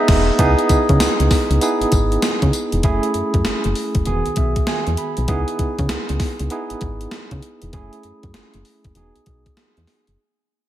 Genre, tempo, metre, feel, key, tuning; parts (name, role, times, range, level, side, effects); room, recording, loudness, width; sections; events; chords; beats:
R&B, new jack swing; 98 BPM; 4/4; swing 64% on 16ths; C# minor; A4 = 440 Hz
tine electric piano; accompaniment; 0.0-10.2 s; D#3 to B5; -20 LUFS; right 2 dB; medium tremolo, slapback echo
solid FM bass; bass; 0.1-10.2 s; E1 to C#3; -20 LUFS; equal
gated 80s digital drum machine; drums; 0.1-10.2 s; crash cymbal, hi-hat, kick drum, snare drum, tambourine; -20 LUFS; equal; gated reverb, gated reverb snare
moderate concert hall reverb, RT60 2.1 s; big arena sound; -16 LUFS; side -12 dB against mid
0.4-10.2 A section
band accent 0.0-0.4; fade-out 0.4-10.2; tine electric piano fill 4.1-5.3
0.4 C#m7; 2.8 F#m7; 4.1 Emaj7; 5.3 C#m7; 7.7 F#m7; 9.0 Emaj7
| 0.39 1.00 1.61 2.22 | 2.84 3.45 4.06 4.67 | 5.29 5.90 6.51 7.12 | 7.73 8.35 8.96 9.57